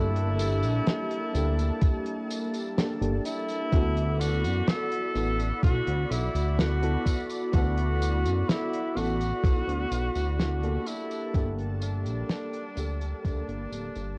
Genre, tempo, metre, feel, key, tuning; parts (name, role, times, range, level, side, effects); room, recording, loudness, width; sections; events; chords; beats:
vaporwave; 63 BPM; 4/4; straight; D major; A4 = 437 Hz
warm tenor saxophone; melody; 0.0-14.2 s; D4 to A4; -36 LUFS; equal; tape echo
mellow FM electric piano; accompaniment; 0.0-14.2 s; G3 to A4; -35 LUFS; equal; lush chorus
lush unison pad; sustained chords; 0.0-14.2 s; G3 to B5; -42 LUFS; equal; chorus
chorused synth bass; bass; 0.0-14.2 s; D1 to F#2; -30 LUFS; equal
damped 70s drum kit; drums; 0.2-14.2 s; hi-hat, snare drum, tambourine; -35 LUFS; equal; vintage 12-bit sampler grit
electronic kick drum; drums; 1.8-13.4 s; -26 LUFS; equal; vintage 12-bit sampler grit
light reverb, studio reverb; worn, warbling old tape, cassette tape, warbly pitch drift; -28 LUFS; mono
0.0-14.2 A section
fade-out 8.8-14.2
0.0 Gmadd9; 3.7 D6; 10.9 Gmadd9
0.87 1.82 2.77 | 3.73 4.68 5.63 6.58 | 7.54 8.49 9.44 10.39 | 11.34 12.30 13.25